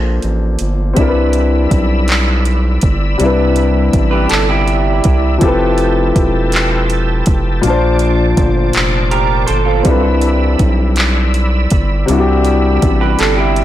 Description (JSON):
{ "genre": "slow six-eight R&B", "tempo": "54 BPM (dotted quarters)", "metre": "6/8", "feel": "straight", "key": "C major", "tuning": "A4 = 440 Hz", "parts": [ { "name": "dark baby grand piano", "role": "accompaniment", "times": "0.0-13.6 s", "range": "Bb2 to A5", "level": "-16 LUFS", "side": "left 3 dB", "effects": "none" }, { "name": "round analog bass", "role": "bass", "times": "0.0-13.6 s", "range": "E1 to C2", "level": "-15 LUFS", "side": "equal", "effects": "transformer saturation" }, { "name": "smooth R&B drum kit", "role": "drums", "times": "0.2-13.6 s", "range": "handclaps, hi-hat, kick drum", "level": "-16 LUFS", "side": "equal", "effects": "soft clipping on snare" }, { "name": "percussive tonewheel organ", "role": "sustained chords", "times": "1.0-13.6 s", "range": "B4 to E6", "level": "-23 LUFS", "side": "right 1 dB", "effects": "chorus vibrato, slow rotary speaker" }, { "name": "electric guitar through a small old amp", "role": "second line", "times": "4.1-5.4, 9.1-13.6 s", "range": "E4 to C5", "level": "-18 LUFS", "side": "right 7 dB", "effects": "wide subtle chorus, tape echo" } ], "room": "digital ambience", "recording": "blown-out, overdriven recording, overdrive", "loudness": "-11 LUFS", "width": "side -13 dB against mid", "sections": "1.0-13.6 A section", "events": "none", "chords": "0.0 Bbmaj9; 1.0 Cmaj9; 5.4 Fmaj9#11; 7.6 Bbmaj9; 9.9 Cmaj9" }